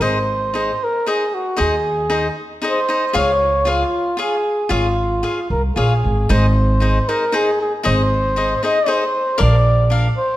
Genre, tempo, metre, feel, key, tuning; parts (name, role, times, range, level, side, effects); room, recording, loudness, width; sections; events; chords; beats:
mexican folk, mariachi; 116 BPM; 3/4; rubato; Db major, Ab major from 6.3 s; A4 = 442 Hz
dark trumpet; melody; 0.0-10.4 s; F4 to Eb5; -19 LUFS; equal
cavaquinho; accompaniment; 0.0-10.1 s; D4 to F5; -22 LUFS; left 2 dB
upright bass; bass; 0.0-10.1 s; Ab1 to Eb2; -18 LUFS; equal
moderate recital hall reverb, RT60 1.7 s; -15 LUFS; side -14 dB against mid
0.0-6.3 A section; 6.3-10.4 B section
0.0 Ab; 3.1 Db; 6.3 Ab; 9.4 Bb
| 0.01 0.54 1.07 | 1.59 2.11 2.63 | 3.15 3.66 4.18 | 4.70 5.22 5.75 | 6.28 6.81 7.33 | 7.85 8.37 8.88 | 9.39 9.91